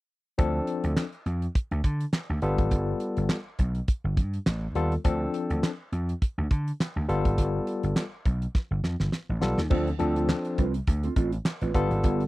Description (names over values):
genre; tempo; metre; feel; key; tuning
early-eighties boogie funk; 103 BPM; 4/4; swing 56% on 16ths; D dorian; A4 = 440 Hz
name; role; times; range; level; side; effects
barky tine electric piano; accompaniment; 0.4-12.2 s; F3 to A4; -28 LUFS; left 3 dB; medium stereo tremolo
vintage slap bass; bass; 0.4-12.2 s; G1 to D3; -27 LUFS; equal; none
damped 70s drum kit; drums; 0.4-12.3 s; crash cymbal, handclaps, hi-hat, kick drum, snare drum; -26 LUFS; equal; none
mellow electric guitar; riff; 9.7-12.2 s; B3 to B4; -31 LUFS; right 6 dB; analog chorus
room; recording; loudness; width
little or no reverb; dry, close 1970s-style studio recording; -25 LUFS; side -18 dB against mid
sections
0.4-9.7 A section; 9.7-12.3 B section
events
drum fill 8.5-9.7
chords
0.4 Dm7; 2.4 G9; 5.0 Dm7; 7.1 G9; 9.7 Dm7; 11.7 G9